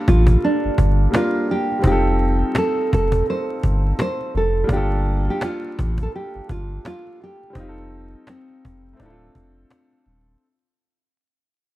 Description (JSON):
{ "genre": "lo-fi hip hop", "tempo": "84 BPM", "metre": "4/4", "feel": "swing 62% on 16ths", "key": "G minor", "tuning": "A4 = 441 Hz", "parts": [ { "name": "clear upright piano", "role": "accompaniment", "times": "0.0-10.4 s", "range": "G3 to Bb4", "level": "-26 LUFS", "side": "left 1 dB", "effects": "none" }, { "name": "nylon-string guitar", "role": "melody", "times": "0.1-10.0 s", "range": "C4 to C5", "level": "-23 LUFS", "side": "right 2 dB", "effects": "none" }, { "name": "warm sub bass", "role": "bass", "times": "0.1-10.4 s", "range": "D1 to A1", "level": "-18 LUFS", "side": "equal", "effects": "none" }, { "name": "cajon", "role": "drums", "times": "0.1-10.2 s", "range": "none", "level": "-22 LUFS", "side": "equal", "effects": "none" } ], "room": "studio ambience", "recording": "dark, warm production, vinyl crackle", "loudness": "-17 LUFS", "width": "side -16 dB against mid", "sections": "0.0-10.4 A section", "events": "fade-out 0.0-10.4", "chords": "0.0 Gm7; 1.8 F7; 4.7 Gm7; 7.6 F7; 9.0 Dm7" }